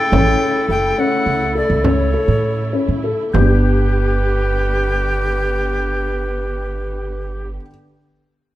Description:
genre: contemporary instrumental, chamber music in an uneven meter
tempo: 194-215 BPM (eighths)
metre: 11/8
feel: straight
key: G major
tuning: A4 = 440 Hz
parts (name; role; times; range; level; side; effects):
- breathy bright jazz flute; melody; 0.0-7.5 s; G4 to G5; -22 LUFS; left 1 dB; none
- warm clarinet; second line; 0.0-7.5 s; A4 to B4; -24 LUFS; equal; none
- rich studio string section; sustained chords; 0.0-7.5 s; C#3 to G4; -28 LUFS; right 1 dB; none
- felt-muted upright piano; arpeggios; 0.0-7.7 s; G3 to A4; -22 LUFS; left 3 dB; none
- glockenspiel with rubber mallets; texture; 0.0-7.6 s; G6 to A6; -31 LUFS; left 5 dB; none
- upright bass; bass; 0.1-7.6 s; F#1 to A2; -19 LUFS; right 1 dB; none
- frame drum; percussion; 0.1-3.6 s; none; -22 LUFS; right 3 dB; none
room: light reverb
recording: close, detailed microphones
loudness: -15 LUFS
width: side -15 dB against mid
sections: 0.0-3.3 A section; 3.3-6.7 B section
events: slowing down 0.0-3.3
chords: 0.0 A; 3.3 G

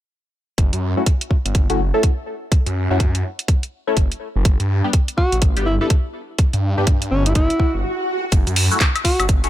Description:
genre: bass house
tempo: 124 BPM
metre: 4/4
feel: swing 62% on 16ths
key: F# phrygian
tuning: A4 = 440 Hz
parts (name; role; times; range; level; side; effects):
- phased detuned saw bass; bass; 0.6-9.5 s; F#1 to G2; -20 LUFS; equal; phaser, overdrive, sidechain pumping
- electronic kick drum; drums; 0.6-9.4 s; none; -16 LUFS; equal; none
- garage drum kit; drums; 0.6-9.5 s; handclaps, hi-hat, shaker, woodblock; -22 LUFS; equal; none
- band-passed chord stab; stabs; 1.0-9.5 s; G3 to A4; -23 LUFS; left 2 dB; phaser, analog chorus, sidechain pumping, tape echo
- mellow alto saxophone; melody; 5.2-9.3 s; C#4 to F#4; -22 LUFS; equal; tape echo
- swell; sound effects; 7.5-8.3 s; none; -26 LUFS; right 1 dB; none
room: little or no reverb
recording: none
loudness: -16 LUFS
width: side -13 dB against mid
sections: 0.6-8.3 A section; 8.3-9.5 B section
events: filter sweep on synth stab 0.6-8.3; swell 7.5-8.3; stop 7.8-8.3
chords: 0.6 F#m7; 4.5 G; 8.3 F#m7

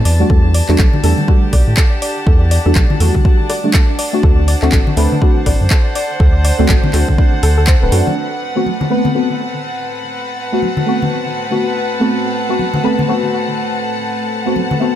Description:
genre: deep house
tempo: 122 BPM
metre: 4/4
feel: swing 60% on 16ths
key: A dorian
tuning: A4 = 440 Hz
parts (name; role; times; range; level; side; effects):
- round analog bass; bass; 0.0-8.0 s; D1 to A2; -13 LUFS; equal; tube saturation, sidechain pumping
- rich chamber string section; texture; 0.0-15.0 s; C4 to A5; -22 LUFS; equal; sidechain pumping
- soft round pluck; arpeggios; 0.1-8.0 s; A4 to D5; -24 LUFS; left 2 dB; chorus, sidechain pumping, analog delay
- deep house drum kit; drums; 0.1-8.0 s; handclaps, hi-hat, rim click; -22 LUFS; equal; overdrive, low-pass filter on hats, low-pass filter on snare
- deep mellow chord stab; stabs; 0.2-15.0 s; G3 to B4; -18 LUFS; equal; chorus, sidechain pumping, analog delay
- electronic kick drum; drums; 0.3-7.8 s; none; -12 LUFS; equal; overdrive
- congas; percussion; 0.8-14.8 s; none; -22 LUFS; left 2 dB; sidechain pumping on perc, analog delay
- dark analog pad; sustained chords; 8.2-15.0 s; A3 to F#5; -26 LUFS; left 1 dB; lush chorus, sidechain pumping
- warm studio violin section; texture; 8.2-15.0 s; F#5; -29 LUFS; equal; none
room: light reverb, digital ambience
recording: echo-heavy mix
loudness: -12 LUFS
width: side -11 dB against mid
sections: 0.0-8.2 A section; 8.2-15.0 B section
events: filter sweep on synth stab 0.0-8.2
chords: 0.1 Em11; 4.2 D7; 8.2 Am69

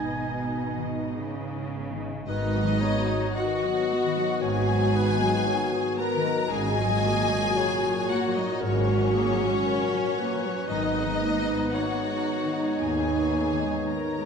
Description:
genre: cinematic, emotional film score for orchestra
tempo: 57 BPM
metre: 4/4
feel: rubato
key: unclear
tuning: A4 = 441 Hz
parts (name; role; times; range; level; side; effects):
- rich symphonic violin section; melody; 0.0-14.3 s; G#4 to A#5; -33 LUFS; left 3 dB; none
- rich symphonic violin section; second line; 0.0-14.3 s; C#4 to D#5; -32 LUFS; left 3 dB; none
- warm oboe; second line; 0.0-1.2 s; G#5; -35 LUFS; right 4 dB; none
- dark studio viola section; accompaniment; 0.0-14.3 s; C#3 to F#4; -31 LUFS; right 1 dB; none
- mellow French horn section; sustained chords; 0.0-14.3 s; A#2 to F#4; -30 LUFS; left 1 dB; none
- concert harp; arpeggios; 0.0-14.3 s; G#2 to A#5; -34 LUFS; left 6 dB; none
- rich symphonic cello section; bass; 0.0-13.7 s; D#2 to C#3; -32 LUFS; right 4 dB; none
- warm studio double bass section; bass; 0.0-13.7 s; G#1 to D#2; -33 LUFS; right 4 dB; none
- mellow clarinet; second line; 2.3-14.3 s; G#4 to D#5; -34 LUFS; left 1 dB; none
room: wet scoring stage reverb, RT60 1.6 s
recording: dark, warm production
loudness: -23 LUFS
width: side -6 dB against mid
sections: 0.0-2.3 A section; 2.3-14.3 B section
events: none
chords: 0.0 G#m; 2.3 B/G#; 6.5 F#/G#; 10.7 G#madd9

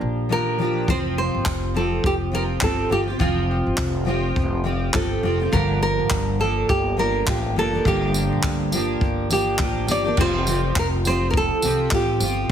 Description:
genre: acoustic pop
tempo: 103 BPM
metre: 4/4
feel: swing 60% on 16ths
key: unclear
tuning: A4 = 440 Hz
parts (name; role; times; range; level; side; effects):
- nylon-string guitar; melody; 0.0-12.5 s; F4 to D5; -24 LUFS; right 2 dB; ping-pong delay
- fingerpicked steel-string acoustic guitar; accompaniment; 0.0-12.5 s; G2 to G4; -24 LUFS; equal; double-tracked left and right
- upright bass; bass; 0.0-12.5 s; F1 to C2; -26 LUFS; equal; none
- compact cocktail drum kit; drums; 0.9-12.5 s; crash cymbal, handclaps, kick drum, tambourine; -25 LUFS; equal; none
room: moderate studio reverb, RT60 0.8 s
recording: heavily compressed radio sound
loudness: -19 LUFS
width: side -9 dB against mid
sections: 0.9-10.2 A section; 10.2-12.5 B section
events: none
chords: 0.0 Gm7; 0.9 Fsus2; 5.5 Gm7; 10.2 Fsus2

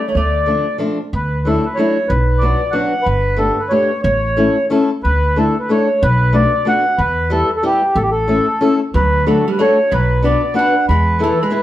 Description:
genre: musette waltz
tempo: 185 BPM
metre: 3/4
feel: swing 53% on 8ths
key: D major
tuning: A4 = 440 Hz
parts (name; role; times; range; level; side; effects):
- mellow accordion; melody; 0.0-11.6 s; G4 to F#5; -16 LUFS; equal; plate reverb
- archtop guitar, miked and amplified; second line; 0.0-0.8, 9.0-11.6 s; E3 to D4; -22 LUFS; right 4 dB; none
- upright bass; bass; 0.1-11.3 s; G1 to E2; -17 LUFS; equal; none
- fingerpicked old ladder-braced acoustic guitar; accompaniment; 0.5-11.6 s; F3 to B4; -17 LUFS; left 2 dB; none
room: wet studio reverb, RT60 0.7 s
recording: heard from further back in the room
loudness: -13 LUFS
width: side -13 dB against mid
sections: 0.0-1.1 A section; 1.1-11.6 B section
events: none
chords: 0.1 Dm7; 1.1 Dadd9; 2.1 Bm; 3.1 Gadd9; 4.1 A; 5.0 Dsus2; 6.0 Bm7; 7.0 Em; 8.0 A; 8.9 D; 9.9 Bm; 10.9 E

